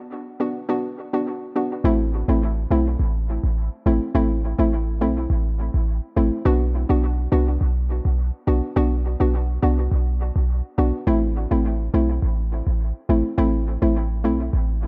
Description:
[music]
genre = dancehall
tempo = 104 BPM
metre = 4/4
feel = straight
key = A dorian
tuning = A4 = 440 Hz
[part]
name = hollow square pluck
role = accompaniment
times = 0.0-14.4 s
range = A3 to F#4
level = -26 LUFS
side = equal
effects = chorus, low-pass filter, dub echo
[part]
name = clean 808-style bass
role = bass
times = 1.8-14.9 s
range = A1 to C2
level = -23 LUFS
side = equal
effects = none
[sound]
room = light reverb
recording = echo-heavy mix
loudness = -22 LUFS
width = mono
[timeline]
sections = 0.0-1.8 A section; 1.8-14.9 B section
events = filter sweep on synth pluck 0.0-1.8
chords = 0.0 Bm; 1.8 Am; 6.5 Bm; 11.1 Am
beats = 0.11 0.69 1.26 | 1.84 2.42 2.99 3.57 | 4.15 4.72 5.30 5.88 | 6.46 7.03 7.61 8.19 | 8.76 9.34 9.92 10.49 | 11.07 11.65 12.22 12.80 | 13.38 13.96 14.53

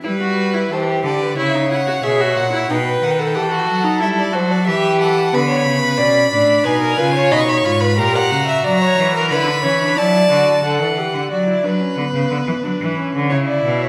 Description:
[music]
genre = classical, baroque-style fugue for string quartet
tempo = 90 BPM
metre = 4/4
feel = straight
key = E minor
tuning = A4 = 439 Hz
[part]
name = rich violin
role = melody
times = 0.0-10.6 s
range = B4 to C#6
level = -24 LUFS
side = equal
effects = none
[part]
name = rich viola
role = accompaniment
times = 0.0-13.9 s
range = B3 to B4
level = -23 LUFS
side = equal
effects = none
[part]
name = bright cello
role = bass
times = 0.0-13.9 s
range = G#2 to G3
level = -22 LUFS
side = equal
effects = none
[part]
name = rich violin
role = second line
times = 0.1-13.9 s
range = G4 to F#5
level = -21 LUFS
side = equal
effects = none
[sound]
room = wet recital hall reverb, RT60 1.6 s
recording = none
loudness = -17 LUFS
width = mono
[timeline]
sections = 0.0-10.6 A section; 10.6-13.9 B section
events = none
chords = 0.0 Em/G; 1.4 F#7/C#; 2.7 B7; 4.0 Em; 5.3 Bm; 6.6 C#7/B; 8.0 F#7/A#; 9.3 Bm/D; 10.6 D; 12.0 Dmaj7sus2/C#; 13.3 Aadd9 (rootless)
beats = | 0.05 0.71 1.38 2.04 | 2.70 3.36 4.01 4.67 | 5.33 5.99 6.65 7.31 | 7.97 8.64 9.30 9.97 | 10.64 11.31 11.98 12.64 | 13.31

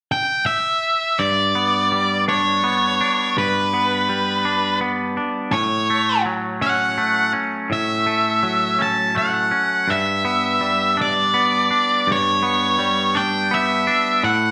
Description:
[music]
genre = rock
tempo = 55 BPM (dotted quarters)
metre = 6/8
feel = straight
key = G lydian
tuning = A4 = 440 Hz
[part]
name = octave-fuzz lead guitar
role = melody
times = 0.1-14.5 s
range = B4 to A5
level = -20 LUFS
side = equal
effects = distortion, slapback echo
[part]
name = twangy electric guitar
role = arpeggios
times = 1.2-14.5 s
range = G2 to D4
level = -24 LUFS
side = equal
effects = slapback echo
[sound]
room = moderate recital hall reverb, RT60 1.3 s, digital ambience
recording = none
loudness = -19 LUFS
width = mono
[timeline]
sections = 0.0-1.2 A section; 1.2-14.5 B section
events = none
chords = 0.0 N.C.; 1.2 G; 5.5 A6; 9.9 G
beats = 0.12 | 1.20 2.28 | 3.37 4.45 | 5.54 6.62 | 7.71 8.80 | 9.89 10.97 | 12.06 13.15 | 14.24

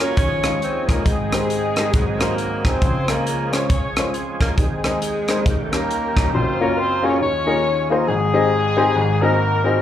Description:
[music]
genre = uptempo gospel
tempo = 137 BPM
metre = 4/4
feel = swing 60% on 8ths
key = Ab major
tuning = A4 = 439 Hz
[part]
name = breathy tenor saxophone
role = melody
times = 0.0-6.3 s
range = Ab3 to Db4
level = -26 LUFS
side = right 2 dB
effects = plate reverb, slapback echo
[part]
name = warm horn section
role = melody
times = 0.0-9.8 s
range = Ab3 to Db5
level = -23 LUFS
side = left 2 dB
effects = plate reverb, slapback echo
[part]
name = warm upright piano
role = accompaniment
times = 0.0-9.8 s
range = Gb1 to Eb5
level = -21 LUFS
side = left 2 dB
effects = plate reverb, slapback echo
[part]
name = overdriven tonewheel organ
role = sustained chords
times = 0.0-6.3 s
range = Eb3 to Bb4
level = -28 LUFS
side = right 3 dB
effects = slow rotary speaker, chorus vibrato, plate reverb
[part]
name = crisp fusion drum kit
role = drums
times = 0.2-6.2 s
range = hi-hat, kick drum, rim click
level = -20 LUFS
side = equal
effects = none
[sound]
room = moderate club reverb, RT60 0.6 s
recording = live gig heard through the venue's PA, club reverb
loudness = -17 LUFS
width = side -10 dB against mid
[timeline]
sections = 0.0-6.3 A section; 6.3-9.8 B section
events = none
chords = 0.2 Eb9sus4; 1.1 Abmaj7; 1.9 Ab7; 2.8 Dbmaj7; 4.6 Ab/Eb; 5.5 Eb7; 6.3 Gbmaj7; 7.2 Eb9sus4; 8.1 Abmaj7; 9.0 Ab7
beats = 0.17 0.61 | 1.05 1.50 1.94 2.38 | 2.82 3.26 3.70 4.14 | 4.58 5.02 5.46 5.90 | 6.33 6.77 7.21 7.65 | 8.08 8.52 8.96 9.39

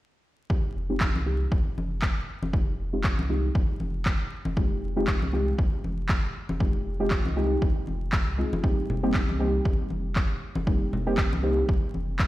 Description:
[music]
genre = deep house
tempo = 118 BPM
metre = 4/4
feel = swing 56% on 16ths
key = F minor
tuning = A4 = 444 Hz
[part]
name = deep mellow chord stab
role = stabs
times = 0.5-12.3 s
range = G3 to Ab4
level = -30 LUFS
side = equal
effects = chorus, sidechain pumping, dub echo
[part]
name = electronic kick drum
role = drums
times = 0.5-12.3 s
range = none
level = -25 LUFS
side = equal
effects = small room reverb
[part]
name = sub bass with octave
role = bass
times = 0.8-12.3 s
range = F1 to C2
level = -30 LUFS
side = equal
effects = sidechain pumping
[part]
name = electronic handclaps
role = drums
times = 1.0-12.3 s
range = none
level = -32 LUFS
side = equal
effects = small room reverb
[part]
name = congas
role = percussion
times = 1.2-12.1 s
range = none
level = -34 LUFS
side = left 2 dB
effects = none
[sound]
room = light reverb, digital ambience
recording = played on a big sound system in a bare room, large studio reverb, vinyl crackle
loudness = -24 LUFS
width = side -16 dB against mid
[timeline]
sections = 0.5-12.3 A section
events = filter sweep on synth stab 0.5-12.3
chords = 0.5 Fm9; 8.6 Cm7/F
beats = | 0.50 1.01 1.52 2.03 | 2.53 3.04 3.55 4.06 | 4.57 5.08 5.58 6.09 | 6.60 7.11 7.62 8.13 | 8.64 9.14 9.65 10.16 | 10.67 11.18 11.69 12.20

